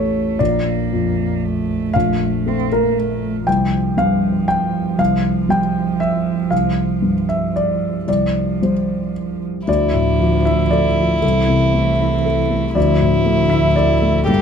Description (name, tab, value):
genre	neoclassical piano and strings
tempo	117 BPM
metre	3/4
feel	rubato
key	D minor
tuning	A4 = 440 Hz
part	dark cello	second line	0.0-14.4 s	E3 to C4	-22 LUFS	right 10 dB	none
part	dark concert grand piano	accompaniment	0.0-14.4 s	A1 to G5	-17 LUFS	left 3 dB	none
part	warm violin	melody	9.7-14.4 s	E4 to G4	-19 LUFS	right 1 dB	tape echo
part	dark double bass	bass	9.7-14.4 s	G1 to D2	-20 LUFS	right 1 dB	none
room	light reverb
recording	close, detailed microphones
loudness	-15 LUFS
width	side -7 dB against mid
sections	0.0-9.7 A section; 9.7-14.4 B section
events	none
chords	0.4 Bbmaj7; 3.5 Csus4; 9.7 Dmadd9; 11.2 Am/C; 12.8 Dmadd9